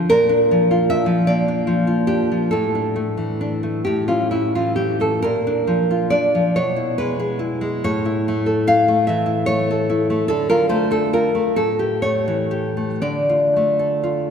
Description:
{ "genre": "romantic piece for solo classical guitar", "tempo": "38-51 BPM (dotted quarters)", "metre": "6/8", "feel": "rubato", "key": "unclear", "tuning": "A4 = 438 Hz", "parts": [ { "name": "nylon-string guitar", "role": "solo", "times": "0.0-14.3 s", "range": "A2 to F5", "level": "-16 LUFS", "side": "equal", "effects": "none" } ], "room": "wet concert hall reverb, RT60 2.6 s", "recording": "recorded in a church or concert hall", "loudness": "-17 LUFS", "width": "side -7 dB against mid", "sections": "0.0-14.3 A section", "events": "none", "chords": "0.1 Bb; 2.5 Asus4; 3.9 A; 5.2 Bb; 6.6 E/B; 7.9 A; 10.3 Dm; 11.6 A7; 13.0 Dm" }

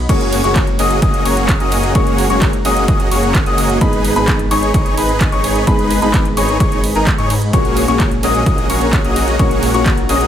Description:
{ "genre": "EDM, festival progressive house", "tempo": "129 BPM", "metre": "4/4", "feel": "straight", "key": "F# major", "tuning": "A4 = 441 Hz", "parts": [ { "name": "lush unison pad", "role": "sustained chords", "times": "0.0-10.3 s", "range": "G#4 to B5", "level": "-26 LUFS", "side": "right 1 dB", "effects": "chorus, sidechain pumping" }, { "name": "wide detuned saw bass", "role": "bass", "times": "0.0-10.3 s", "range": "F#1 to G#2", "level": "-21 LUFS", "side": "equal", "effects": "chorus, sidechain pumping" }, { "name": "felt-muted upright piano", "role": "accompaniment", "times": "0.1-10.3 s", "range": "G#2 to G#4", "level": "-21 LUFS", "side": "left 2 dB", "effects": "sidechain pumping, digital delay" }, { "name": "warm concert grand piano", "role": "arpeggios", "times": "0.1-10.3 s", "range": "A#5 to D#6", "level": "-21 LUFS", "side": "left 4 dB", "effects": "sidechain pumping, digital delay" }, { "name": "dense compressed supersaw", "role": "riff", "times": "0.1-10.3 s", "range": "A#3 to D#5", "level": "-18 LUFS", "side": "equal", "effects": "sidechain pumping, digital delay" }, { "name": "big-room dance drum kit", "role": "drums", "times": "0.1-10.3 s", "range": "crash cymbal, handclaps, hi-hat, ride cymbal", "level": "-23 LUFS", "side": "right 2 dB", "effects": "none" }, { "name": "electronic kick drum", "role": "drums", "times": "0.1-10.0 s", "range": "none", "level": "-16 LUFS", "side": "equal", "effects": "overdrive" } ], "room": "light reverb, digital ambience", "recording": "none", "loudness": "-12 LUFS", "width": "side -10 dB against mid", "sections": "0.0-10.3 A section", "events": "none", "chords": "0.1 F#add9; 3.8 G#m; 7.5 F#add9/A#" }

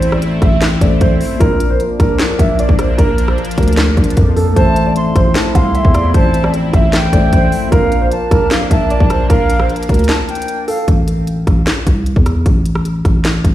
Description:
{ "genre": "hip hop, trap", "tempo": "152 BPM", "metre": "4/4", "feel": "half-time", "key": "unclear", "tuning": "A4 = 440 Hz", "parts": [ { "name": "dark baby grand piano", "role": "melody", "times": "0.0-10.8 s", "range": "A4 to F5", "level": "-19 LUFS", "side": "right 3 dB", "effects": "low-pass filter, tape echo" }, { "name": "mellow tine electric piano", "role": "accompaniment", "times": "0.0-10.9 s", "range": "A3 to E5", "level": "-22 LUFS", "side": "left 4 dB", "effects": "analog chorus, low-pass filter" }, { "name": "sweeping resonant pad", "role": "sustained chords", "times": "0.0-10.8 s", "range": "F3 to E4", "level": "-23 LUFS", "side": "equal", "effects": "chorus" }, { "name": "growling 808-style bass", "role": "bass", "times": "0.0-13.5 s", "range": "A1 to F2", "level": "-15 LUFS", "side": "equal", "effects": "none" }, { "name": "trap drum kit", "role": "drums", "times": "0.0-13.5 s", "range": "handclaps, hi-hat, kick drum, rim click, snare drum", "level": "-14 LUFS", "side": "equal", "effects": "none" }, { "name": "silver concert flute", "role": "second line", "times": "4.6-10.9 s", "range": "F5 to C6", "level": "-21 LUFS", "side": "equal", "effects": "tape echo" } ], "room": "light reverb", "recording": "played on a big sound system in a bare room, large studio reverb", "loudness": "-11 LUFS", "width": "side -13 dB against mid", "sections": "0.0-10.9 A section; 10.9-13.5 B section", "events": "break 10.1-10.9", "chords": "0.0 Am; 1.4 Bb; 4.6 Am; 7.7 Bbmaj7; 10.9 N.C." }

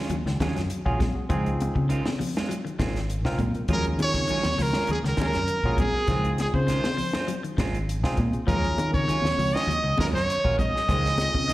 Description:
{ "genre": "afrobeat", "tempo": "100 BPM", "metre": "4/4", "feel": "straight", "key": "Eb dorian", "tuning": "A4 = 440 Hz", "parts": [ { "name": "clean electric guitar", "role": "arpeggios", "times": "0.0-11.5 s", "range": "Db3 to Gb3", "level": "-34 LUFS", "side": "left 5 dB", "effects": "analog chorus" }, { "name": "electric guitar at the edge of break-up", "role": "stabs", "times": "0.0-11.5 s", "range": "Eb3 to F4", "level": "-34 LUFS", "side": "right 4 dB", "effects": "slapback echo" }, { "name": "fingered electric bass", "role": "bass", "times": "0.1-11.5 s", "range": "Ab1 to Eb3", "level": "-27 LUFS", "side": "equal", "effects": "none" }, { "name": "compact cocktail drum kit", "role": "drums", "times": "0.1-11.5 s", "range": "hi-hat, kick drum, snare drum", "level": "-30 LUFS", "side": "equal", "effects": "none" }, { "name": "congas", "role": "percussion", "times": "0.1-11.5 s", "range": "none", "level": "-32 LUFS", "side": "left 1 dB", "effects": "slapback echo" }, { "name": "barky tine electric piano", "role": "accompaniment", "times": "0.9-11.4 s", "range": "Gb3 to Bb4", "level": "-33 LUFS", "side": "left 1 dB", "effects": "overdrive, slapback echo" }, { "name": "brilliant trumpet", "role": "melody", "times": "3.7-11.5 s", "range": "Ab4 to Eb5", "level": "-28 LUFS", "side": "equal", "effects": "none" }, { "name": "bright alto saxophone", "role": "second line", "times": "3.8-11.5 s", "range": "Ab4 to Eb5", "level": "-31 LUFS", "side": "right 3 dB", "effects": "slapback echo" } ], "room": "studio reverb", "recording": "live gig heard through the venue's PA, recital hall reverb", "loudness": "-22 LUFS", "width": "side -16 dB against mid", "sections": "0.0-11.5 A section", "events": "none", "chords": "0.0 Ebm11; 1.3 Dbmaj9; 3.7 Ebm11; 6.1 Dbmaj9; 8.5 Ebm11; 10.9 Dbmaj9" }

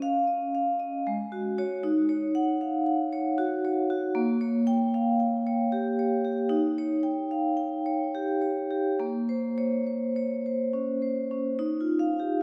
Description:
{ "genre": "classical, contemporary piece for solo vibraphone", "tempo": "68-78 BPM", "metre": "3/4", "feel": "rubato", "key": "unclear", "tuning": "A4 = 439 Hz", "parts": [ { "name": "vibraphone with medium hard mallets", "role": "solo", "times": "0.0-12.4 s", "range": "Ab3 to G5", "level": "-28 LUFS", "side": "equal", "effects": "none" } ], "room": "wet concert hall reverb, RT60 2.2 s", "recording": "heard from further back in the room", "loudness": "-28 LUFS", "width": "mono", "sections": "0.0-11.6 A section", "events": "none", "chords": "0.0 Dbadd9; 1.1 Ab7sus4; 1.8 Ebm7; 4.2 Bbm6; 6.5 Eb9; 9.0 Bbmadd9; 11.6 Ebadd9" }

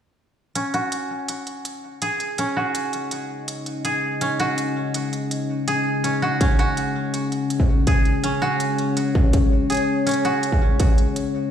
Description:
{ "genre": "half-time drum and bass", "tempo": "164 BPM", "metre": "4/4", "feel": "half-time", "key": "unclear", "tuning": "A4 = 440 Hz", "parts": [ { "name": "deep dark ambient pad", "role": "sustained chords", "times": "2.4-11.5 s", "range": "C#4 to D#5", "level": "-24 LUFS", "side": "left 3 dB", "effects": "chorus, built-in reverb, vintage 12-bit sampler grit, sidechain pumping" }, { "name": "koto", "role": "arpeggios", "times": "0.6-11.5 s", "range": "C#4 to G#4", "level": "-24 LUFS", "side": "right 2 dB", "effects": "low-pass filter, digital delay" }, { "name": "electronic hi-hat", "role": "drums", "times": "0.6-11.2 s", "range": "none", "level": "-31 LUFS", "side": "right 2 dB", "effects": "none" }, { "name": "electronic kick drum", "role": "drums", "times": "6.4-10.9 s", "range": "none", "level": "-18 LUFS", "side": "equal", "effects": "distortion" } ], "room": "light reverb, digital ambience", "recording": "played on a big sound system in a bare room, stone room reverb", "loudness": "-19 LUFS", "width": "side -9 dB against mid", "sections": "0.6-11.5 A section", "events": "filter sweep on ambient pad 0.6-11.5", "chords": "0.6 C#sus2" }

